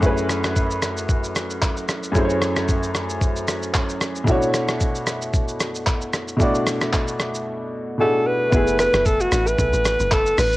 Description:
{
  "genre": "amapiano",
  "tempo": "113 BPM",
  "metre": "4/4",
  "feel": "swing 55% on 16ths",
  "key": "F# minor",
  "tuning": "A4 = 436 Hz",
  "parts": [
    { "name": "clear grand piano", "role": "accompaniment", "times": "0.0-10.6 s", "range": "F#2 to D5", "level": "-23 LUFS", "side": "equal", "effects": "cassette tape" },
    { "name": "lo-fi sampler-style drum kit", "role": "drums", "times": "0.0-10.6 s", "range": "handclaps, hi-hat, kick drum, rim click, shaker", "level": "-22 LUFS", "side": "equal", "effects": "none" },
    { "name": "warm alto saxophone", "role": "melody", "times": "8.0-10.6 s", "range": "F#4 to B4", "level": "-19 LUFS", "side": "equal", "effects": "cassette tape, analog delay" },
    { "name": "deep log drum bass", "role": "bass", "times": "8.5-10.6 s", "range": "F#1 to B1", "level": "-24 LUFS", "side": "equal", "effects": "none" }
  ],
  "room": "light reverb, digital ambience",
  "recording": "home recording on cassette",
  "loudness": "-18 LUFS",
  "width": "side -18 dB against mid",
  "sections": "0.0-8.5 A section; 8.5-10.6 B section",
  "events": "drop 8.5-10.6",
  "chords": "0.0 F#m11; 4.3 Bm11; 8.5 F#m11",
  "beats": "| 0.03 0.56 1.09 1.62 | 2.15 2.68 3.21 3.75 | 4.28 4.81 5.34 5.87 | 6.40 6.93 7.46 7.99 | 8.52 9.05 9.59 10.12"
}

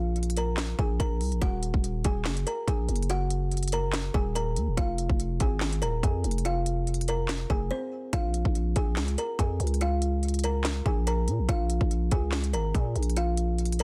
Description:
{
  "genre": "hip hop, trap",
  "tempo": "143 BPM",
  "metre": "4/4",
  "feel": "half-time",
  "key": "Bb minor",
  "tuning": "A4 = 438 Hz",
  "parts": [
    { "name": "kalimba", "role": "melody", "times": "0.0-13.8 s", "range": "C4 to Bb5", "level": "-35 LUFS", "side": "equal", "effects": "plate reverb, digital delay" },
    { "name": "growling 808-style bass", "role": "bass", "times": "0.0-13.8 s", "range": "Eb1 to Bb2", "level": "-30 LUFS", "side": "equal", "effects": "none" },
    { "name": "trap drum kit", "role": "drums", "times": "0.2-13.8 s", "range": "handclaps, hi-hat, kick drum, snare drum", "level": "-32 LUFS", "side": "equal", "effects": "none" }
  ],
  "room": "light reverb",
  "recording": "dense, heavily limited modern master",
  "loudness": "-28 LUFS",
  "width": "mono",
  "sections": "0.0-13.8 A section",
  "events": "break 7.7-8.1",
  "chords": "0.0 Bb7(no3); 1.4 Ebm; 4.8 Fm; 8.1 Bbm7",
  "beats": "0.16 0.58 1.00 | 1.42 1.84 2.26 2.68 | 3.10 3.52 3.94 4.35 | 4.77 5.19 5.61 6.03 | 6.45 6.87 7.29 7.71 | 8.13 8.55 8.97 9.39 | 9.81 10.23 10.65 11.07 | 11.49 11.91 12.33 12.75 | 13.17 13.59"
}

